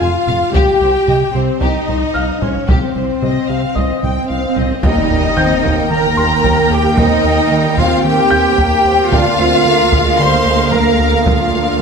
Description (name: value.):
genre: cinematic, hybrid orchestral and electronic film score.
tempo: 112 BPM.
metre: 4/4.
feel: straight.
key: unclear.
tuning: A4 = 440 Hz.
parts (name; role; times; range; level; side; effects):
rich studio violin section; melody; 0.0-11.8 s; G4 to Ab5; -22 LUFS; left 1 dB; none.
warm symphonic violin section; second line; 0.0-11.8 s; C5 to C6; -19 LUFS; left 2 dB; none.
warm symphonic viola section; accompaniment; 0.0-11.8 s; Bb3 to Bb4; -22 LUFS; right 2 dB; none.
warm French horn section; sustained chords; 0.0-11.8 s; G3 to G4; -19 LUFS; left 5 dB; none.
round analog bass; riff; 0.0-11.8 s; C2 to Eb3; -20 LUFS; right 2 dB; none.
rich chamber cello section; bass; 0.0-11.8 s; C2 to C5; -18 LUFS; right 3 dB; none.
warm chamber double bass section; bass; 0.0-11.8 s; F1 to Eb2; -22 LUFS; right 5 dB; none.
dark concert grand piano; texture; 0.0-11.8 s; Eb5 to G6; -24 LUFS; left 2 dB; tape echo.
taiko ensemble; drums; 0.3-11.8 s; none; -20 LUFS; equal; none.
swell and impact; sound effects; 3.5-7.0 s; none; -23 LUFS; right 2 dB; none.
room: moderate scoring stage reverb, RT60 1.6 s.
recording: none.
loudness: -11 LUFS.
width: side -6 dB against mid.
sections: 0.0-4.8 A section; 4.8-11.8 B section.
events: swell 3.5-4.8; impact 4.8-7.0.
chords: 0.0 Fm; 0.5 Cm; 4.8 Eb; 9.1 Bb/D.